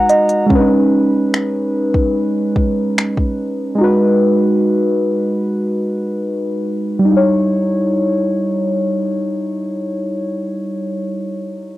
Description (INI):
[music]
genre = contemporary R&B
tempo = 73 BPM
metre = 4/4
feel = straight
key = Eb minor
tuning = A4 = 435 Hz
[part]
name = muted felt-like synth keys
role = accompaniment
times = 0.0-11.8 s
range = G3 to Bb5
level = -14 LUFS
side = equal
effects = chorus
[part]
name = smooth R&B drum kit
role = drums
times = 0.1-3.4 s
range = finger snaps, hi-hat, kick drum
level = -17 LUFS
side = equal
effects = overdrive, cassette tape
[sound]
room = moderate booth ambience, RT60 0.3 s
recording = home recording on cassette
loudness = -14 LUFS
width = side -16 dB against mid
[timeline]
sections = 0.0-7.1 A section; 7.1-10.4 B section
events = synth keys fill 0.0-0.5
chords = 0.0 Abm7; 0.5 B69; 3.8 Abm7; 7.1 Eb7b9